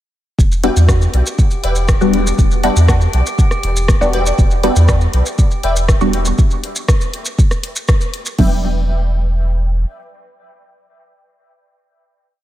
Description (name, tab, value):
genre	dub techno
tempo	120 BPM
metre	4/4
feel	straight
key	E minor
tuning	A4 = 443 Hz
part	soft dub sub bass	bass	0.4-9.8 s	E1 to E2	-15 LUFS	equal	sidechain pumping
part	electronic kick drum	drums	0.4-8.5 s	none	-13 LUFS	equal	small room ambience
part	maracas	percussion	0.4-8.4 s	none	-26 LUFS	equal	none
part	metallic inharmonic drone	texture	1.1-6.4 s	G4	-28 LUFS	left 1 dB	chorus, built-in reverb, sidechain pumping
part	wavetable chord stab	riff	0.6-11.4 s	B4 to G5	-26 LUFS	left 2 dB	ensemble chorus, sidechain pumping, dub echo
part	filtered dub chord stab	stabs	0.6-11.4 s	F#3 to F#4	-18 LUFS	equal	phaser, cassette tape, sidechain pumping, dub echo
part	punchy analog drum machine	drums	0.6-8.5 s	crash cymbal, hi-hat, rim click	-25 LUFS	left 1 dB	overdrive, small room ambience, dub echo
room	light reverb, digital ambience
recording	none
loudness	-12 LUFS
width	side -14 dB against mid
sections	0.4-8.4 groove; 8.4-12.4 final chord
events	none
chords	0.4 Em7